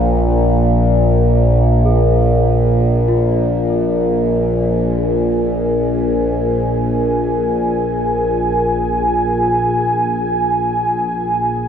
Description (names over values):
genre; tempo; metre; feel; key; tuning
dark ambient drone; free time; none; none; unclear; A4 = 441 Hz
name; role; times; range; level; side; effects
dark analog pad; sustained chords; 0.0-11.7 s; Bb3 to Bb5; -19 LUFS; right 1 dB; chorus
overtone-sweeping drone; drone; 0.0-11.7 s; Bb1 to Bb2; -15 LUFS; equal; chorus, built-in reverb
gamelan-type bronze metallophone; arpeggios; 1.9-10.4 s; F4 to Ab4; -27 LUFS; equal; ping-pong delay
room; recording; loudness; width
wet huge ambient reverb, RT60 7.1 s; in a vast, echoing space; -13 LUFS; side -8 dB against mid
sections
0.0-11.7 A section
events
fade-out 7.2-11.7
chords
0.0 Bb5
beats
free time